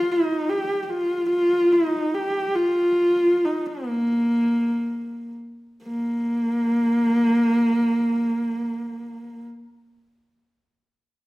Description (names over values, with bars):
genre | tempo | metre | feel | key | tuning
mongolian traditional | 58-76 BPM | 4/4 | straight | unclear | A4 = 442 Hz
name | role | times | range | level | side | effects
dark horsehead fiddle | solo | 0.0-9.5 s | Bb3 to G4 | -20 LUFS | equal | none
room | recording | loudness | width
wet recital hall reverb, RT60 1.4 s | none | -20 LUFS | side -19 dB against mid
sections
0.0-5.8 A section; 5.8-10.0 B section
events
slowing down 0.0-5.8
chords
none